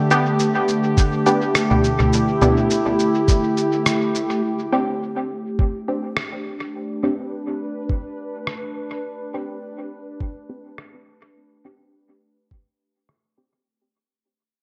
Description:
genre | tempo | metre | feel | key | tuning
ambient dub | 104 BPM | 4/4 | swing 56% on 16ths | unclear | A4 = 439 Hz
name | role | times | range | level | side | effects
warbly tape-like pad | sustained chords | 0.0-13.7 s | D3 to B4 | -24 LUFS | equal | chorus, built-in reverb
filtered dub chord stab | stabs | 0.1-13.5 s | B3 to G4 | -25 LUFS | equal | chorus, vintage 12-bit sampler grit, dub echo
electronic cabasa, rim click and congas | drums | 0.1-13.2 s | none | -25 LUFS | equal | low-pass filter on perc, low-pass filter on snare, dub echo
electronic kick drum | drums | 1.0-12.6 s | none | -21 LUFS | equal | none
room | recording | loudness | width
moderate plate reverb, RT60 1.7 s | dreamy mix soaked in reverb | -21 LUFS | mono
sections
0.0-4.4 A section; 4.4-13.7 B section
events
fade-out 4.4-13.7; filter sweep on synth stab 4.4-13.7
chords
0.0 G/D; 4.4 D7sus4

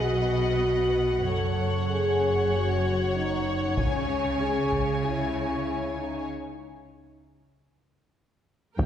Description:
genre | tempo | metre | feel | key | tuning
cinematic, epic orchestral film score | 96 BPM | 4/4 | straight | unclear | A4 = 440 Hz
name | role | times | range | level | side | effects
rich symphonic violin section | melody | 0.0-8.9 s | F#5 to G#5 | -35 LUFS | left 3 dB | none
warm symphonic violin section | second line | 0.0-8.9 s | Bb4 to D#5 | -36 LUFS | left 2 dB | none
warm studio viola section | accompaniment | 0.0-8.9 s | Bb4 to G5 | -36 LUFS | left 1 dB | none
dark French horn section | sustained chords | 0.0-8.9 s | C#4 to A4 | -27 LUFS | left 2 dB | none
rich symphonic cello section | bass | 0.0-8.9 s | F#2 to Bb3 | -32 LUFS | right 3 dB | none
warm symphonic double bass section | bass | 0.0-8.9 s | F#1 to C#2 | -31 LUFS | right 2 dB | none
taiko ensemble | drums | 3.8-5.0, 8.8-8.9 s | none | -31 LUFS | equal | none
mellow tuba | bass | 8.8-8.9 s | Eb2 | -34 LUFS | right 4 dB | none
timpani | percussion | 8.8-8.9 s | Eb3 | -30 LUFS | equal | none
room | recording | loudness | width
wet scoring stage reverb, RT60 1.9 s | heard from further back in the room | -24 LUFS | side -10 dB against mid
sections
0.0-8.8 A section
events
break 6.3-8.8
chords
0.0 B; 1.3 F#m; 3.8 C#m; 6.3 N.C.

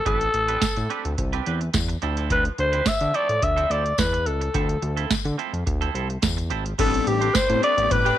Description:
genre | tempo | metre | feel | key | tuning
early-eighties boogie funk | 107 BPM | 4/4 | straight | A minor | A4 = 440 Hz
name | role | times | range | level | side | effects
growling alto saxophone | melody | 0.0-8.2 s | G4 to E5 | -22 LUFS | left 1 dB | slapback echo
clean electric guitar | riff | 0.1-8.2 s | F3 to C5 | -31 LUFS | right 12 dB | wide subtle chorus
fat analog bass | bass | 0.1-8.1 s | G#1 to D3 | -26 LUFS | equal | none
booming analog drum machine | drums | 0.1-8.2 s | crash cymbal, hi-hat, kick drum, snare drum | -26 LUFS | right 1 dB | none
tambourine | percussion | 0.6-7.5 s | none | -33 LUFS | left 16 dB | none
mellow synth brass | accompaniment | 6.8-8.0 s | G3 to A4 | -27 LUFS | left 17 dB | chorus
string machine, full ensemble | sustained chords | 6.8-8.2 s | D5 to D6 | -34 LUFS | left 1 dB | ensemble chorus
warm horn section | second line | 8.1-8.2 s | E3 to G4 | -25 LUFS | left 16 dB | none
room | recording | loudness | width
light reverb | 1960s-style stereo with parts hard left and right | -20 LUFS | side -12 dB against mid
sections
0.0-6.8 A section; 6.8-8.2 B section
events
none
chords
0.0 Am11; 2.0 Dm9; 6.8 Am11

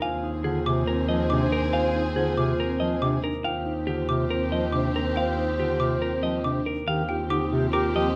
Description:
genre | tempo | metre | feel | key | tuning
classical, minimalist pattern music | 140 BPM | 4/4 | straight | Eb major | A4 = 440 Hz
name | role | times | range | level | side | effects
semi-hollow electric guitar | melody | 0.0-8.2 s | G4 to F5 | -34 LUFS | equal | none
alto flute | second line | 0.0-8.1 s | G4 to C5 | -33 LUFS | equal | none
warm symphonic violin section | sustained chords | 0.0-8.2 s | C4 to Ab4 | -36 LUFS | equal | none
vibraphone with soft mallets | arpeggios | 0.0-8.2 s | C4 to F4 | -32 LUFS | equal | none
xylophone with rubber mallets | arpeggios | 0.0-8.0 s | G5 to D6 | -35 LUFS | equal | none
warm double bass | bass | 0.0-8.2 s | Eb2 | -32 LUFS | equal | none
mellow bass clarinet | accompaniment | 0.4-8.1 s | C3 to F3 | -33 LUFS | equal | none
room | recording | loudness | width
moderate large studio reverb, RT60 1.4 s | none | -25 LUFS | mono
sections
0.0-6.9 A section; 6.9-8.2 B section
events
none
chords
0.0 Ab69/Eb; 3.4 Eb69

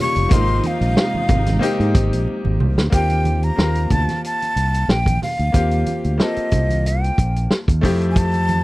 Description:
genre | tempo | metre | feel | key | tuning
lush 1970s-style soul | 92 BPM | 4/4 | swing 54% on 16ths | unclear | A4 = 441 Hz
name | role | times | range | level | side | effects
breathy jazz flute | melody | 0.0-8.6 s | Eb5 to Db6 | -23 LUFS | left 1 dB | none
bright baby grand piano | accompaniment | 0.0-8.6 s | G3 to Bb4 | -25 LUFS | left 2 dB | none
warm studio string section | sustained chords | 0.0-2.9 s | Bb2 to Eb4 | -27 LUFS | right 1 dB | none
fingered electric bass | bass | 0.2-8.6 s | F1 to Ab2 | -19 LUFS | equal | none
warm soul drum kit | drums | 0.2-8.6 s | hi-hat, kick drum, snare drum | -18 LUFS | equal | none
congas | percussion | 0.3-8.6 s | none | -28 LUFS | right 4 dB | none
room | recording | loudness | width
little or no reverb | dry, close 1970s-style studio recording | -16 LUFS | side -19 dB against mid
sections
0.0-2.9 A section; 2.9-8.6 B section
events
drum fill 2.3-2.9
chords
0.3 Ab6; 2.9 Eb6; 7.8 Fmaj7

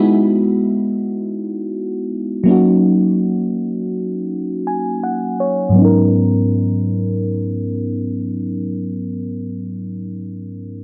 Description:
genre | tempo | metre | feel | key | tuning
R&B | 82 BPM | 4/4 | swing 54% on 16ths | G# minor | A4 = 440 Hz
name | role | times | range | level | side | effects
mellow FM electric piano | accompaniment | 0.0-10.8 s | G#2 to G#5 | -18 LUFS | equal | chorus, low-pass filter
room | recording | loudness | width
light reverb | dry, gritty hardware recording, cassette tape | -18 LUFS | mono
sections
0.0-5.8 A section; 5.8-8.7 B section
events
filter sweep on FM electric piano 0.0-5.8; FM electric piano fill 4.3-5.8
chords
0.0 Emaj9; 2.5 D#m7; 5.8 G#m11

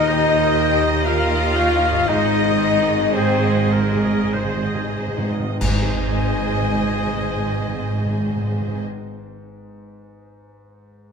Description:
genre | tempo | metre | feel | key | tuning
cinematic, emotional film score for orchestra | 45-64 BPM | 3/4 | rubato | Ab major | A4 = 440 Hz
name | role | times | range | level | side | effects
warm studio violin section | melody | 0.0-8.8 s | Eb5 | -31 LUFS | left 2 dB | none
clear oboe | second line | 0.0-5.0 s | Ab4 to Db5 | -29 LUFS | right 2 dB | none
mellow clarinet | second line | 0.0-8.8 s | Ab4 to F5 | -27 LUFS | left 1 dB | none
mellow hollow silver concert flute | second line | 0.0-8.8 s | C5 to Ab5 | -28 LUFS | left 2 dB | none
rich symphonic violin section | second line | 0.0-8.8 s | C5 to Ab5 | -29 LUFS | left 2 dB | none
bright grand piano | accompaniment | 0.0-11.1 s | Eb2 to Ab5 | -30 LUFS | right 1 dB | none
rich symphonic viola section | accompaniment | 0.0-8.8 s | G4 to G5 | -28 LUFS | right 2 dB | none
dark French horn section | sustained chords | 0.0-8.8 s | Ab3 to F4 | -23 LUFS | left 6 dB | none
concert harp | arpeggios | 0.0-9.5 s | Ab2 to C5 | -35 LUFS | left 15 dB | none
dark chamber double bass section | bass | 0.0-8.8 s | Ab1 to Eb2 | -26 LUFS | right 5 dB | none
rich symphonic cello section | bass | 0.0-8.8 s | Eb2 to Ab2 | -26 LUFS | right 4 dB | none
timpani | percussion | 2.1-8.8 s | Ab2 | -26 LUFS | equal | none
clash cymbals and concert bass drum | percussion | 5.6-8.2 s | none | -27 LUFS | right 1 dB | none
room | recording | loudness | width
moderate scoring stage reverb, RT60 1.5 s | none | -17 LUFS | side -6 dB against mid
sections
0.0-5.6 A section; 5.6-9.5 B section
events
slowing down 0.0-5.6; timpani fill 2.1-5.6; band accent 5.6-6.9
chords
0.0 Eb; 2.1 Ab

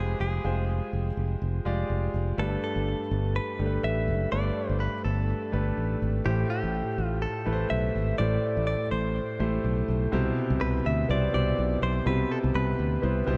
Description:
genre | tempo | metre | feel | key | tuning
1980s-style pop | 124 BPM | 4/4 | swing 55% on 16ths | C major | A4 = 439 Hz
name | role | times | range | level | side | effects
direct-recorded clean electric guitar | melody | 0.0-13.4 s | G4 to E5 | -35 LUFS | equal | spring reverb, shimmer reverb, delay
clear concert grand piano | accompaniment | 0.0-13.4 s | G2 to G5 | -32 LUFS | equal | shimmer reverb
fingered electric bass | bass | 0.0-13.4 s | F1 to D2 | -30 LUFS | equal | none
room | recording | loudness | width
light reverb, small room ambience | dark, warm production | -28 LUFS | mono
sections
0.0-2.4 A section; 2.4-10.1 B section; 10.1-13.4 C section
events
none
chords
0.0 Fmadd9; 2.4 Gadd9; 6.3 Am7; 10.1 Cmaj7

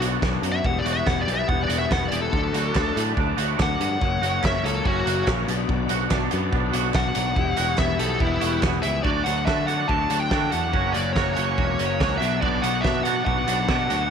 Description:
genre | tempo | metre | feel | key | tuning
indie rock | 143 BPM | 4/4 | straight | unclear | A4 = 440 Hz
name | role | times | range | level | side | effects
raw garage guitar | riff | 0.0-14.1 s | F#2 to E4 | -28 LUFS | left 14 dB | overdrive
twangy electric guitar | riff | 0.0-14.1 s | B2 to F#4 | -28 LUFS | right 16 dB | ensemble chorus
picked electric bass | bass | 0.0-14.1 s | E1 to D3 | -27 LUFS | right 1 dB | none
loose indie drum kit | drums | 0.0-14.0 s | hi-hat, kick drum, snare drum | -26 LUFS | right 1 dB | none
bluesy overdriven lead guitar | melody | 0.5-14.1 s | E4 to A5 | -27 LUFS | left 2 dB | distortion, tape echo
bright tonewheel organ | sustained chords | 2.3-9.0, 12.4-14.1 s | F#4 to E6 | -37 LUFS | right 1 dB | none
group handclap | percussion | 2.8-8.7 s | none | -36 LUFS | right 18 dB | none
room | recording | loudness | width
small room ambience | 1960s-style stereo with parts hard left and right | -20 LUFS | side -7 dB against mid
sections
0.0-9.0 A section; 9.0-14.1 B section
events
lead electric guitar solo 0.0-9.0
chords
0.0 Bm; 0.6 Emadd9; 2.3 D; 4.0 F#; 5.5 Bm; 7.4 Emadd9; 9.0 D; 10.7 F#; 12.2 Bm

